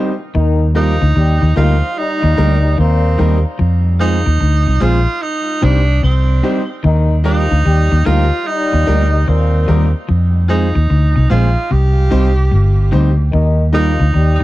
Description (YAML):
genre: reggae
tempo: 74 BPM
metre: 4/4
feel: swing 64% on 16ths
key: Eb major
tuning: A4 = 438 Hz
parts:
  - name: mellow electric guitar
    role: accompaniment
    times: 0.0-13.9 s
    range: G3 to Ab4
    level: -23 LUFS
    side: right 3 dB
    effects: tape echo
  - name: clear baby grand piano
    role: stabs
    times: 0.0-13.9 s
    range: Eb4 to C5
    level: -23 LUFS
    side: left 4 dB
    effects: none
  - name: muted trombone section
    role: second line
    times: 0.3-14.4 s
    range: Bb2 to G4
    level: -22 LUFS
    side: left 3 dB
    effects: tape echo
  - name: clean electric guitar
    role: riff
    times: 0.3-14.4 s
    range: G2 to F3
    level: -21 LUFS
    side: left 3 dB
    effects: none
  - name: vintage muted fingered electric bass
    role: bass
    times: 0.4-14.4 s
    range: G1 to F2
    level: -12 LUFS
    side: equal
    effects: none
  - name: warm tenor saxophone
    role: melody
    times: 0.8-14.4 s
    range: C4 to G4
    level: -20 LUFS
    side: right 3 dB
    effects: tape echo
room: small room ambience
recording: dry, close 1970s-style studio recording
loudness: -11 LUFS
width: side -17 dB against mid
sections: 0.3-14.4 A section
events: none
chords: 0.3 Eb; 3.6 Fm; 5.2 Cm; 6.8 Eb; 10.1 Fm; 11.7 Cm; 13.3 Eb